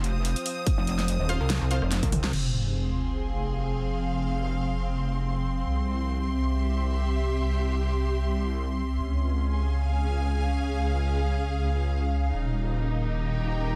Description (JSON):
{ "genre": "heavy wobble dubstep", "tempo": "144 BPM", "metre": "4/4", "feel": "swing 54% on 16ths, half-time", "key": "F minor", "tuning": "A4 = 441 Hz", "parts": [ { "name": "evolving wavetable pad", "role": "sustained chords", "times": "0.0-13.8 s", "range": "C3 to F5", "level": "-37 LUFS", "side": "equal", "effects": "chorus, built-in reverb, sidechain pumping" }, { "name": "wobble bass", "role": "bass", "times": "0.0-13.8 s", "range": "Eb1 to Db2", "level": "-29 LUFS", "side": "equal", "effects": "chorus, overdrive" }, { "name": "dubstep drum kit", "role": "drums", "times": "0.0-2.4 s", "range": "crash cymbal, hi-hat, rim click, snare drum, toms", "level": "-34 LUFS", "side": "equal", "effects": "studio reverb" }, { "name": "warm studio string section", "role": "texture", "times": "0.0-13.8 s", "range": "C4 to Eb6", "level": "-36 LUFS", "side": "equal", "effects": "sidechain pumping" }, { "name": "electronic kick drum", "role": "drums", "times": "0.7-2.1 s", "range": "none", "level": "-28 LUFS", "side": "equal", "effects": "studio reverb" }, { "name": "pulsing pluck wobble bass", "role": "bass", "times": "0.8-2.3 s", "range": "Eb1 to C2", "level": "-28 LUFS", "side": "equal", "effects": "chorus, overdrive" }, { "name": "orchestra-hit-like synth stab", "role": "stabs", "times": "1.3-1.8 s", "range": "F4 to F5", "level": "-38 LUFS", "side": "equal", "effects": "built-in reverb, dub echo" }, { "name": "sub drop", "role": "sound effects", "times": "2.3-4.0 s", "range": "none", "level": "-34 LUFS", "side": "equal", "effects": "none" } ], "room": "little or no reverb", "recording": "dense, heavily limited modern master", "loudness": "-27 LUFS", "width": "mono", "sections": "0.0-2.3 A section; 2.3-13.8 B section", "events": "drop 0.0-2.3; drum fill 1.9-2.3; impact 2.3-4.0", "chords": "0.0 F5; 2.3 Fm; 5.7 C; 9.0 Db; 12.3 Eb" }